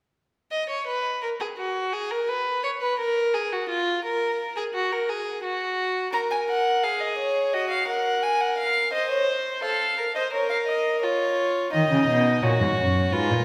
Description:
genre	classical, baroque-style fugue for string quartet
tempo	86 BPM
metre	4/4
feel	straight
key	Eb minor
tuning	A4 = 441 Hz
part	rich violin	second line	0.5-13.4 s	Eb4 to Eb5	-28 LUFS	equal	none
part	warm violin	melody	6.1-13.4 s	Cb5 to Bb5	-26 LUFS	equal	none
part	warm cello	bass	11.7-13.4 s	Gb2 to Eb3	-24 LUFS	equal	none
room	wet scoring stage reverb, RT60 1.8 s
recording	recorded in a church or concert hall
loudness	-25 LUFS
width	mono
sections	0.5-13.4 A section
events	none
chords	0.5 N.C.; 6.1 Bbm; 7.5 Gbmaj7; 8.9 F/C; 10.3 Bbm; 11.7 Ebm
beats	| 0.52 1.23 1.93 2.63 | 3.34 4.04 4.74 5.44 | 6.14 6.84 7.54 8.24 | 8.94 9.63 10.33 11.03 | 11.73 12.43 13.13

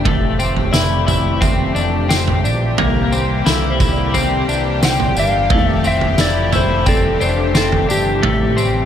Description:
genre	dream pop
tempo	88 BPM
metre	4/4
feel	straight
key	F major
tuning	A4 = 440 Hz
part	lush unison pad	sustained chords	0.0-8.9 s	C3 to G4	-22 LUFS	equal	chorus
part	twelve-string electric guitar	arpeggios	0.0-8.9 s	A3 to E4	-20 LUFS	left 5 dB	lush chorus, ping-pong delay
part	fat analog bass	bass	0.0-8.9 s	F1 to C2	-20 LUFS	equal	none
part	soft synth bell	texture	0.0-8.5 s	G4 to G5	-32 LUFS	equal	none
part	oversized low-tuned drum kit	drums	0.1-8.7 s	kick drum, snare drum, tambourine, toms	-18 LUFS	right 1 dB	none
part	electric slide guitar	melody	4.8-8.9 s	G4 to G5	-19 LUFS	left 1 dB	ping-pong delay
room	light reverb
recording	none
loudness	-13 LUFS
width	side -9 dB against mid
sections	0.0-8.9 A section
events	none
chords	0.1 Fmaj7; 2.8 C7; 5.5 Fmaj7; 8.2 Am7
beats	| 0.05 0.73 1.42 2.10 | 2.78 3.46 4.14 4.82 | 5.51 6.19 6.87 7.55 | 8.23

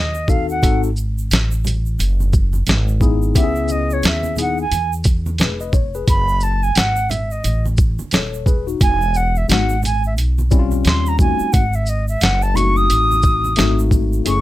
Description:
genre	hip hop, jazz-hop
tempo	88 BPM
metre	4/4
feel	swing 60% on 16ths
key	unclear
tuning	A4 = 440 Hz
part	silver concert flute	melody	0.0-14.4 s	C#5 to D#6	-20 LUFS	right 1 dB	none
part	upright bass	bass	0.0-14.4 s	D#1 to E2	-19 LUFS	equal	none
part	egg shaker and congas	percussion	0.1-14.4 s	none	-31 LUFS	right 4 dB	none
part	tine electric piano	accompaniment	0.3-14.4 s	G3 to D#5	-22 LUFS	left 7 dB	medium stereo tremolo
part	boom bap sampler-style drum kit	drums	0.3-14.4 s	hi-hat, kick drum, shaker, snare drum	-16 LUFS	equal	none
room	light reverb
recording	none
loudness	-15 LUFS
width	side -15 dB against mid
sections	0.0-14.4 A section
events	flute solo 0.0-14.4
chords	0.0 D#dim7; 0.6 G#7b9; 2.7 G#5; 3.4 C#m7; 6.1 F#m69; 8.8 Emaj9; 10.9 D#13; 11.5 G#7b9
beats	| 0.63 1.31 1.99 2.67 | 3.35 4.04 4.72 5.40 | 6.08 6.76 7.44 8.13 | 8.81 9.49 10.17 10.85 | 11.54 12.22 12.90 13.58 | 14.26

